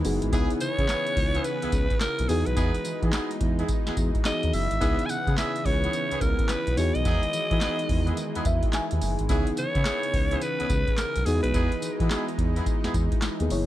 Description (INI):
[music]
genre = R&B, new jack swing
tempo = 107 BPM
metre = 4/4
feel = swing 63% on 16ths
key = unclear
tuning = A4 = 442 Hz
[part]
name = mellow FM electric piano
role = accompaniment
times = 0.0-13.7 s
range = B3 to G#5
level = -32 LUFS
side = left 2 dB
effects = chorus
[part]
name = lush unison pad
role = sustained chords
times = 0.0-13.7 s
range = C#3 to D#4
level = -33 LUFS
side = equal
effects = chorus
[part]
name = smooth synth bass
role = bass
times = 0.0-13.6 s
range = F#1 to E3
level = -27 LUFS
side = equal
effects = none
[part]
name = booming analog drum machine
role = drums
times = 0.0-13.7 s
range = handclaps, hi-hat, kick drum, snare drum, tambourine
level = -27 LUFS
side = equal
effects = vintage 12-bit sampler grit
[part]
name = mellow horn section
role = stabs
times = 0.3-12.9 s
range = B3 to G#4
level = -35 LUFS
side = right 2 dB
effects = none
[part]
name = raspy alto saxophone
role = melody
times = 0.6-12.0 s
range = G#4 to G#5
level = -29 LUFS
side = equal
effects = none
[sound]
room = little or no reverb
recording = none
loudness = -23 LUFS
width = side -14 dB against mid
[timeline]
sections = 0.0-13.7 A section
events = FM electric piano fill 8.2-9.3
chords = 0.3 C#m7; 2.3 Emaj7; 4.8 C#m7; 6.8 Emaj7; 9.3 C#m7; 11.3 Emaj7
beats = | 0.33 0.89 1.45 2.01 | 2.57 3.13 3.69 4.25 | 4.81 5.37 5.93 6.50 | 7.06 7.62 8.18 8.74 | 9.30 9.86 10.42 10.98 | 11.54 12.10 12.66 13.22